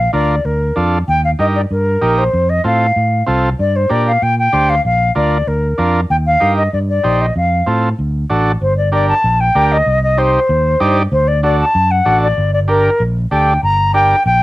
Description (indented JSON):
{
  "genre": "latin",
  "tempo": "191 BPM",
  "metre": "4/4",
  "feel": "straight",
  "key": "G harmonic minor from 8.6 s",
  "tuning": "A4 = 440 Hz",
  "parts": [
    { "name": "silver concert flute", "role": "melody", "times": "0.0-14.4 s", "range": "Bb4 to Bb5", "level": "-14 LUFS", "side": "left 1 dB", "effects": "none" },
    { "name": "fingered electric bass", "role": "bass", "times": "0.0-14.4 s", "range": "G1 to Bb2", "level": "-16 LUFS", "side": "equal", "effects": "none" },
    { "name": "combo organ", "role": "accompaniment", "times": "0.1-14.2 s", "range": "C4 to D5", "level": "-17 LUFS", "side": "right 2 dB", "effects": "cassette tape" }
  ],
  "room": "light reverb",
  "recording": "home recording on cassette",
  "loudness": "-12 LUFS",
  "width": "side -17 dB against mid",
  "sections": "0.0-8.6 A section; 8.6-14.4 B section",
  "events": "none",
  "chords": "0.0 Bb; 1.1 Eb; 2.3 F; 3.6 Gm; 4.8 Bb; 6.1 Eb; 7.4 F; 8.0 D; 8.6 Gm; 9.9 Cm; 11.1 D; 12.4 Gm",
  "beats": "0.14 0.45 0.77 | 1.08 1.39 1.71 2.02 | 2.34 2.65 2.96 3.28 | 3.59 3.91 4.22 4.54 | 4.85 5.16 5.48 5.79 | 6.10 6.42 6.73 7.05 | 7.36 7.67 7.99 8.30 | 8.62 8.93 9.24 9.55 | 9.87 10.18 10.49 10.81 | 11.12 11.44 11.75 12.06 | 12.38 12.69 13.00 13.31 | 13.63 13.94 14.26"
}